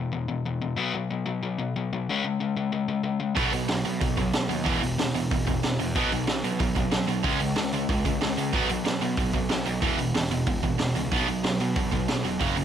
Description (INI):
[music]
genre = punk rock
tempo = 186 BPM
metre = 4/4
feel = straight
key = unclear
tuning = A4 = 441 Hz
[part]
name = overdriven semi-hollow guitar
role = riff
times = 0.0-12.6 s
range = E2 to C#4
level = -28 LUFS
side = left 5 dB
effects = none
[part]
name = distorted electric guitar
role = riff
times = 3.4-12.6 s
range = E2 to C#4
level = -29 LUFS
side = right 15 dB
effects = overdrive
[part]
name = fuzz picked electric bass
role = bass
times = 3.4-12.6 s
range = E1 to C#3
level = -32 LUFS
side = right 1 dB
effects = overdrive
[part]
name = raw garage drum kit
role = drums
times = 3.4-12.6 s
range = hi-hat, kick drum, snare drum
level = -28 LUFS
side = right 1 dB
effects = none
[sound]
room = light reverb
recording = none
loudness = -24 LUFS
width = side -9 dB against mid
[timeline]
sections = 0.0-12.6 A section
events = none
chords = 0.0 E5; 0.8 B5; 2.1 C#5; 3.4 B5; 4.7 E5; 5.9 B5; 7.2 C#5; 8.5 B5; 9.8 E5; 11.1 B5